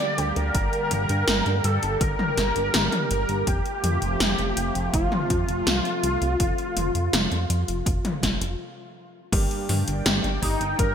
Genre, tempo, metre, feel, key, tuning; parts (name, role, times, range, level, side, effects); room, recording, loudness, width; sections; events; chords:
synthwave; 82 BPM; 4/4; straight; G minor; A4 = 443 Hz
wide unison lead; melody; 0.0-10.9 s; Eb4 to D5; -27 LUFS; equal; ensemble chorus, ping-pong delay
phased analog pad; sustained chords; 0.0-10.9 s; C3 to G5; -32 LUFS; equal; phaser, chorus, sidechain pumping
80s electronic pad drums; drums; 0.0-10.9 s; crash cymbal, hi-hat, snare drum, toms; -26 LUFS; left 1 dB; gated reverb on snare and toms, gated reverb
chorused synth bass; bass; 0.2-10.9 s; F1 to G2; -26 LUFS; equal; tube saturation
electronic kick drum; drums; 0.5-10.9 s; -26 LUFS; equal
wide unison pluck; arpeggios; 9.3-10.9 s; G3 to G4; -34 LUFS; left 3 dB; phaser, digital delay
warm baby grand piano; stabs; 9.3-10.9 s; G2 to D5; -32 LUFS; right 3 dB; ensemble chorus, digital delay
light reverb; bright 1980s-style digital production; -21 LUFS; side -8 dB against mid
0.0-9.3 A section; 9.3-10.9 B section
stop 8.6-9.3
0.0 Gm; 3.5 F; 9.3 Gm